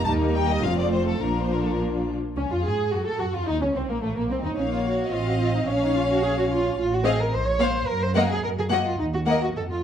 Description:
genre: quick classical-period movement for string orchestra.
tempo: 108 BPM.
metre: 2/4.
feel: rubato.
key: Bb minor.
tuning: A4 = 444 Hz.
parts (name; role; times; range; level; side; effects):
clear studio violin section; melody; 0.0-9.4 s; A3 to A5; -30 LUFS; left 7 dB; none.
rich studio violin section; second line; 0.0-9.4 s; A3 to Eb5; -28 LUFS; left 2 dB; none.
warm studio viola section; accompaniment; 0.0-9.4 s; F3 to A4; -28 LUFS; right 1 dB; none.
dark studio cello section; bass; 0.0-9.8 s; Eb2 to Db5; -28 LUFS; right 2 dB; none.
dark studio double bass section; bass; 0.0-9.8 s; F1 to A2; -28 LUFS; right 1 dB; none.
room: moderate recital hall reverb, RT60 1.3 s.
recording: dark, warm production.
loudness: -21 LUFS.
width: side -9 dB against mid.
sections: 0.0-2.4 A section; 2.4-9.8 A section.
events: none.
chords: 0.1 Eb; 0.6 F; 1.2 Bb; 2.4 Db; 2.9 F; 3.5 Cm7; 4.6 Bbm; 5.1 F7/A; 5.7 Bbm; 6.8 F7/A; 7.3 Bbm; 7.9 Ebm/Gb; 9.0 Ebm.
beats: | 0.07 0.64 | 1.21 1.79 | 2.37 2.92 | 3.47 4.03 | 4.58 5.12 | 5.68 6.23 | 6.78 7.33 | 7.88 8.43 | 8.99 9.56.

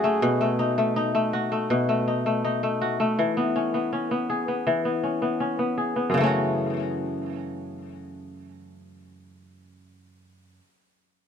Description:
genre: folktronica.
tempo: 81 BPM.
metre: 4/4.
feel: straight.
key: F# dorian.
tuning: A4 = 440 Hz.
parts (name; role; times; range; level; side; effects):
mellow flugelhorn; melody; 0.0-0.5 s; G#4; -30 LUFS; right 1 dB; ping-pong delay.
kora; arpeggios; 0.0-10.7 s; F#2 to G#4; -23 LUFS; left 1 dB; low-pass filter, ping-pong delay.
room: light reverb.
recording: none.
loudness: -22 LUFS.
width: side -7 dB against mid.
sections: 0.0-6.1 A section; 6.1-9.1 B section.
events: none.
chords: 0.2 B7; 3.2 E6; 6.1 F#m7.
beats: | 0.22 0.96 1.70 2.44 | 3.18 3.92 4.66 5.40 | 6.14 6.88 7.62 8.37.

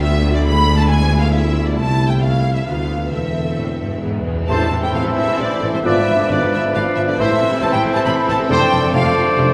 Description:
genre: classical, dramatic, fast romantic movement for symphony orchestra.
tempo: 136 BPM.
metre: 3/4.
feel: rubato.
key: A minor.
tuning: A4 = 441 Hz.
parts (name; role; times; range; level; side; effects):
rich symphonic violin section; melody; 0.0-9.4 s; C5 to B5; -27 LUFS; equal; none.
warm symphonic violin section; second line; 0.0-9.5 s; D4 to B5; -28 LUFS; equal; none.
rich symphonic viola section; accompaniment; 0.0-9.5 s; C3 to A4; -28 LUFS; equal; none.
concert harp; arpeggios; 0.0-9.5 s; G#2 to C6; -28 LUFS; equal; none.
mellow tuba; bass; 0.0-9.4 s; E1 to D2; -26 LUFS; equal; none.
rich symphonic cello section; bass; 0.0-9.4 s; C2 to A2; -28 LUFS; equal; none.
warm symphonic double bass section; bass; 0.0-9.4 s; E1 to D2; -24 LUFS; equal; none.
cymbal swell and tam-tam; percussion; 1.8-6.3 s; none; -35 LUFS; equal; none.
timpani; percussion; 4.0-4.4 s; E2; -28 LUFS; equal; none.
clear oboe; second line; 4.5-9.5 s; D5 to E5; -26 LUFS; equal; none.
mellow clarinet; second line; 4.5-9.5 s; B4 to C5; -27 LUFS; equal; none.
mellow flute section; second line; 4.5-9.4 s; C5 to B5; -26 LUFS; equal; none.
mellow bassoon; accompaniment; 4.5-9.5 s; E3 to A3; -26 LUFS; equal; none.
dark French horn section; sustained chords; 4.5-8.6 s; A3 to E#4; -27 LUFS; equal; none.
dark trumpet section; stabs; 4.5-8.7 s; C5 to D5; -25 LUFS; equal; none.
room: wet concert hall reverb, RT60 1.9 s.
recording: none.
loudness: -17 LUFS.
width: mono.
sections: 0.0-4.5 A section; 4.5-9.5 B section.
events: timpani fill 4.0-4.5; band accent 4.5-4.9.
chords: 0.5 E7/D; 1.8 Am/C; 2.7 Bdim/D; 3.1 Am/E; 4.0 E; 4.5 Am; 5.9 G#dim7; 7.2 Am; 8.5 F6.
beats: 0.02 | 0.46 0.90 1.33 | 1.77 2.21 2.66 | 3.12 3.58 4.03 | 4.49 4.95 5.40 | 5.85 6.30 6.75 | 7.20 7.63 8.08 | 8.51 8.94 9.38.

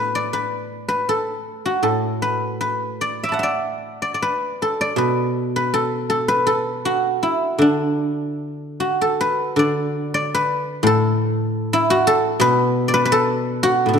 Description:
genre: chinese traditional, Chinese solo plucked strings.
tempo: 73-88 BPM.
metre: 2/4.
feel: rubato.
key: D gong mode.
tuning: A4 = 440 Hz.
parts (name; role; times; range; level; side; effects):
guzheng; solo; 0.0-14.0 s; A2 to D6; -18 LUFS; equal; none.
room: moderate scoring stage reverb, RT60 2.0 s.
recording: dark, warm production.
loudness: -18 LUFS.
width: side -6 dB against mid.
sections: 0.0-9.6 A section; 9.6-14.0 B section.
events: none.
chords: none.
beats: | 0.32 1.08 | 1.83 2.61 | 3.42 4.21 | 4.97 5.71 | 6.46 7.22 | 7.99 8.80 | 9.59 10.33 | 11.04 11.72 | 12.41 13.10 | 13.80.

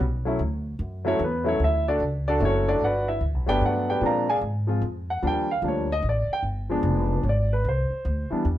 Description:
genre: jazz piano trio.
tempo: 149 BPM.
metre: 3/4.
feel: swing 64% on 8ths.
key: unclear.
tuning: A4 = 440 Hz.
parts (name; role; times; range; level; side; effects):
upright bass; bass; 0.0-8.6 s; F1 to Bb2; -26 LUFS; equal; none.
warm grand piano; melody; 0.3-8.4 s; E3 to Bb5; -24 LUFS; equal; none.
room: light reverb.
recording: dark, warm production.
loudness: -22 LUFS.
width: side -13 dB against mid.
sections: 0.0-2.8 A section; 2.8-8.6 A section.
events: grand piano solo 0.0-8.6.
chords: 0.4 Dmaj7; 2.8 Gmaj7; 4.0 Bb7; 5.2 Ebmaj9; 6.4 G7b9; 7.6 Cadd9.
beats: | 0.40 0.80 1.20 | 1.60 2.00 2.40 | 2.81 3.21 3.61 | 4.01 4.42 4.82 | 5.22 5.63 6.03 | 6.43 6.84 7.24 | 7.64 8.05 8.45.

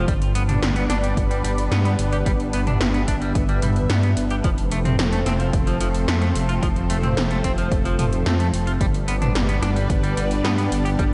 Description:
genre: synthwave.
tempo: 110 BPM.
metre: 4/4.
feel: straight.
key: G mixolydian.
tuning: A4 = 441 Hz.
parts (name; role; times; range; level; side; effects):
lush unison pad; sustained chords; 0.0-11.1 s; F3 to E5; -28 LUFS; equal; chorus, phaser, sidechain pumping.
clean electric guitar; riff; 0.0-11.0 s; F3 to G4; -32 LUFS; equal; subtle chorus, low-pass filter, diffuse ambient delay.
dark detuned saw bass; bass; 0.0-11.1 s; F1 to G2; -24 LUFS; equal; none.
80s electronic pad drums; drums; 0.1-11.1 s; hi-hat, snare drum, toms; -29 LUFS; equal; gated reverb on snare and toms.
electronic kick drum; drums; 0.1-11.1 s; none; -26 LUFS; equal; none.
room: moderate lush hall reverb, RT60 2.2 s.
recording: dreamy mix soaked in reverb, nothing above 11.0 kHz.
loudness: -21 LUFS.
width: mono.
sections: 0.0-11.1 A section.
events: none.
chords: 0.1 G; 4.4 F; 8.8 G.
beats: | 0.08 0.63 1.17 1.72 | 2.26 2.81 3.35 3.90 | 4.44 4.99 5.54 6.08 | 6.63 7.17 7.72 8.26 | 8.81 9.35 9.90 10.44 | 10.99.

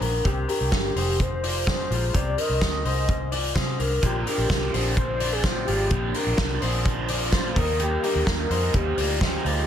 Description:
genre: jangly indie pop.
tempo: 127 BPM.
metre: 4/4.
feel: straight.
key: C minor.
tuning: A4 = 440 Hz.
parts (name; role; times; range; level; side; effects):
electric guitar through a small old amp; arpeggios; 0.0-9.7 s; D3 to D5; -28 LUFS; left 3 dB; spring reverb.
vintage muted fingered electric bass; bass; 0.0-9.6 s; F1 to C3; -27 LUFS; equal; none.
loose indie drum kit; drums; 0.0-9.6 s; hi-hat, kick drum, snare drum; -26 LUFS; equal; none.
warm velvety synth lead; melody; 0.2-9.7 s; G4 to Eb5; -29 LUFS; left 2 dB; chorus.
overdriven electric guitar; accompaniment; 4.0-9.7 s; Bb2 to Eb4; -30 LUFS; right 6 dB; phaser.
room: light reverb, small room ambience.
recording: dense, heavily limited modern master.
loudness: -21 LUFS.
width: side -9 dB against mid.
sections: 0.0-9.7 A section.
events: none.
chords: 0.0 Cmadd9; 4.0 Bbadd9; 7.6 Eb.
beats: | 0.25 0.72 1.19 1.67 | 2.14 2.61 3.08 3.55 | 4.03 4.50 4.97 5.44 | 5.91 6.38 6.86 7.33 | 7.80 8.27 8.74 9.21.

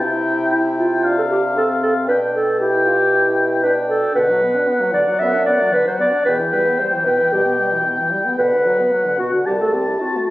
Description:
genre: quick classical-period movement for wind quintet.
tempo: 114 BPM.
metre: 4/4.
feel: rubato.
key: unclear.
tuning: A4 = 438 Hz.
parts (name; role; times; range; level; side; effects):
warm oboe; second line; 0.0-10.3 s; F5 to A5; -21 LUFS; left 2 dB; none.
clear French horn; accompaniment; 0.0-10.3 s; B2 to F4; -24 LUFS; left 1 dB; none.
mellow bassoon; bass; 0.0-9.9 s; C2 to C3; -23 LUFS; equal; none.
dark clarinet; accompaniment; 0.5-10.3 s; E4 to E5; -18 LUFS; right 1 dB; none.
room: moderate recital hall reverb, RT60 1.3 s.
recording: recorded on a phone in the room, studio reverb, compression.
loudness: -15 LUFS.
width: side -17 dB against mid.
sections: 0.0-10.3 A section.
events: none.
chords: 0.0 C; 1.0 Dm7/C; 2.1 G/B; 4.2 Bm; 6.3 Em; 8.4 Bm/D; 9.5 Am7/C.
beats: 0.52 1.05 1.57 | 2.09 2.60 3.12 3.64 | 4.16 4.68 5.21 5.74 | 6.26 6.79 7.33 7.86 | 8.39 8.93 9.47 10.02.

